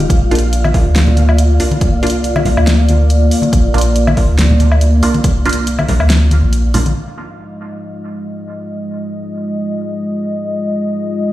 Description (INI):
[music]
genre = deep dubstep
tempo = 140 BPM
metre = 4/4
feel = swing 55% on 16ths, half-time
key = F dorian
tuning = A4 = 440 Hz
[part]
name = dark analog pad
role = sustained chords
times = 0.0-11.3 s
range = Ab3 to Eb5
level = -18 LUFS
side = equal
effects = chorus
[part]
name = saturated sub bass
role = bass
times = 0.0-6.9 s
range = Bb1 to D2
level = -12 LUFS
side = equal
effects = none
[part]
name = deep house drum kit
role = drums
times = 0.0-6.9 s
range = hi-hat, snare drum, woodblock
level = -20 LUFS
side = left 1 dB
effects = overdrive
[part]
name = congas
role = percussion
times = 0.0-6.9 s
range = none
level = -20 LUFS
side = left 2 dB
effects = dub echo
[part]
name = wind-like tuned noise texture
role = texture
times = 0.0-7.0 s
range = F4 to F5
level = -28 LUFS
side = right 1 dB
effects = built-in reverb
[part]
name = electronic kick drum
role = drums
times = 0.1-5.3 s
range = none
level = -15 LUFS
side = equal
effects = overdrive
[part]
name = filtered dub chord stab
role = stabs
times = 0.3-6.8 s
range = Bb3 to F4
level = -22 LUFS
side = right 2 dB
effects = phaser, lush chorus, dub echo
[sound]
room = little or no reverb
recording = played on a big sound system in a bare room, large studio reverb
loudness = -11 LUFS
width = side -15 dB against mid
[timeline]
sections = 0.0-7.0 A section; 7.0-11.3 B section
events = none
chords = 0.1 Bb; 7.0 Fm7